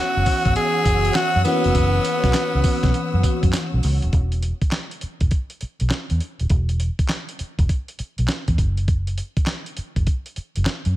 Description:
R&B, new jack swing; 101 BPM; 4/4; swing 65% on 16ths; A4 = 439 Hz
raspy tenor saxophone; melody; 0.0-3.5 s; B3 to G#4; -22 LUFS; equal
FM electric piano with soft pad layer; accompaniment; 0.0-4.2 s; E3 to F#4; -25 LUFS; left 2 dB; chorus
warm studio string section; sustained chords; 0.0-4.1 s; C#5 to E6; -28 LUFS; equal
vintage muted fingered electric bass; bass; 0.2-10.9 s; D#1 to F#2; -21 LUFS; equal
dusty soul sampler-style drum kit; drums; 0.3-11.0 s; handclaps, hi-hat, kick drum, snare drum, tambourine; -22 LUFS; equal
digital ambience; -18 LUFS; side -15 dB against mid
0.0-4.1 A section; 4.1-11.0 B section
0.0 F#7sus4; 4.1 E5; 8.6 F#5

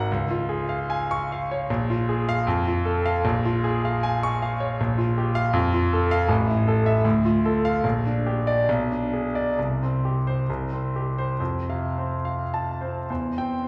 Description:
classical, romantic character piece for solo piano; 64-80 BPM; 2/4; rubato; F major from 4.8 s; A4 = 439 Hz
clear concert grand piano; solo; 0.0-13.7 s; Ab1 to Db6; -24 LUFS; equal
wet recital hall reverb, RT60 1.6 s; heard from further back in the room; -24 LUFS; mono
0.0-11.4 A section; 11.4-13.7 B section
0.1 Db; 1.7 Bb5; 2.5 F; 3.2 Bbm7; 4.8 Bb5; 5.5 F; 6.3 A5; 7.0 Dm; 7.8 Gm/Bb; 8.7 Bm6; 9.6 C5; 11.4 F; 13.1 C/E

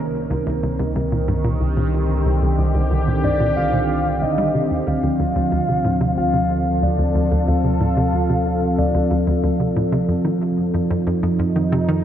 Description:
ambient, sequencer-driven space music; 92 BPM; 4/4; straight; C dorian; A4 = 444 Hz
sweeping resonant pad; sustained chords; 0.0-12.0 s; D3 to Bb4; -20 LUFS; right 1 dB; chorus
round analog bass; bass; 0.0-12.0 s; C2 to F2; -24 LUFS; equal
hollow square pluck; riff; 0.3-12.0 s; C2 to G3; -23 LUFS; equal; chorus, tape echo
soft octave-layered synth lead; melody; 3.2-9.4 s; D5 to F5; -25 LUFS; left 1 dB; chorus, tape echo
wet cathedral reverb, RT60 6.0 s; in a vast, echoing space; -17 LUFS; side -10 dB against mid
0.0-12.0 A section
0.0 Cmadd9; 4.9 Dm7; 10.1 F7

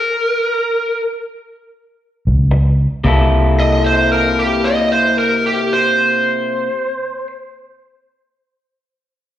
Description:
electric blues shuffle; 75-88 BPM; 4/4; swing 64% on 8ths; C mixolydian; A4 = 438 Hz
lead guitar through a small cranked amp; melody; 0.0-7.3 s; G4 to Eb5; -15 LUFS; right 1 dB; overdrive, slapback echo, plate reverb
vintage muted fingered electric bass; bass; 2.3-6.6 s; C2 to Db2; -14 LUFS; equal
electric guitar through a small old amp; riff; 2.5-6.7 s; C3 to A4; -18 LUFS; left 2 dB; wide subtle chorus, slapback echo
light reverb; live gig heard through the venue's PA, recital hall reverb, nothing above 10.8 kHz; -13 LUFS; side -11 dB against mid
0.0-3.0 A section; 3.0-6.2 B section
slowing down 0.0-3.0; stop 0.0-2.3
0.0 N.C.; 3.0 C6

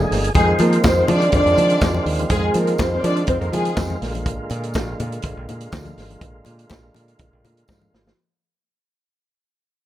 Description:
disco; 123 BPM; 4/4; straight; F dorian; A4 = 439 Hz
percussive tonewheel organ; sustained chords; 0.0-8.1 s; D3 to Ab4; -25 LUFS; right 1 dB; overdrive, fast rotary speaker
modern bright fingered electric bass; bass; 0.0-8.1 s; G1 to F3; -22 LUFS; equal
warm soul drum kit; drums; 0.1-8.2 s; handclaps, hi-hat, kick drum, snare drum; -23 LUFS; equal
congas; percussion; 0.3-8.2 s; -30 LUFS; left 5 dB
warm studio string section; second line; 0.4-3.7 s; Ab3 to D5; -19 LUFS; equal
tambourine; percussion; 0.8-7.8 s; -40 LUFS; right 4 dB
light reverb, small room ambience; -16 LUFS; side -13 dB against mid
0.3-8.2 A section
fade-out 0.3-8.2; drum fill 7.7-8.2
0.3 Fm7; 4.0 Bb7

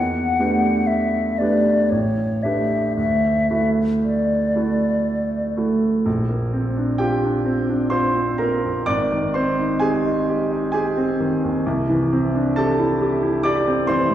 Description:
classical, impressionist duo for flute and grand piano; 56-69 BPM; 3/4; rubato; D major; A4 = 441 Hz
hollow concert flute; melody; 0.0-5.5 s; C#5 to F#5; -22 LUFS; left 4 dB
clear grand piano; accompaniment; 0.0-14.1 s; Ab1 to D6; -18 LUFS; right 1 dB
wet recital hall reverb, RT60 1.5 s; heard from further back in the room, lossy compression artefacts; -18 LUFS; side -11 dB against mid
0.0-6.1 A section; 6.1-14.1 B section
0.0 Em11; 1.9 A9sus4; 3.0 Dadd9; 6.1 Bb69; 8.9 Abmaj7; 11.6 C69

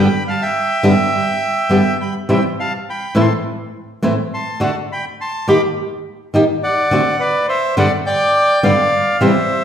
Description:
tango; 104 BPM; 4/4; rubato; A4 = 444 Hz
bandoneon; melody; 0.0-9.6 s; B4 to D6; -17 LUFS; equal
flamenco guitar; accompaniment; 0.0-9.3 s; G2 to G4; -16 LUFS; equal
wet large studio reverb, RT60 1.4 s; heard from further back in the room; -14 LUFS; side -9 dB against mid
0.0-9.6 A section
0.0 G; 2.3 C; 3.5 Am; 4.6 D; 5.8 Eb; 6.9 D7; 8.1 G

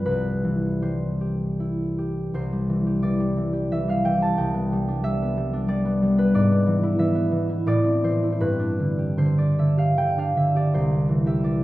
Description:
classical, solo harp piece; 76-95 BPM; 3/4; rubato; C major; A4 = 440 Hz
concert harp; solo; 0.0-11.6 s; C2 to A5; -20 LUFS; equal
wet recital hall reverb, RT60 1.4 s; heard from further back in the room; -20 LUFS; side -16 dB against mid
0.0-2.3 A section; 2.3-11.6 A section
0.0 C; 4.4 G/C; 6.3 E7/G#; 7.7 Am; 8.4 G; 10.7 C

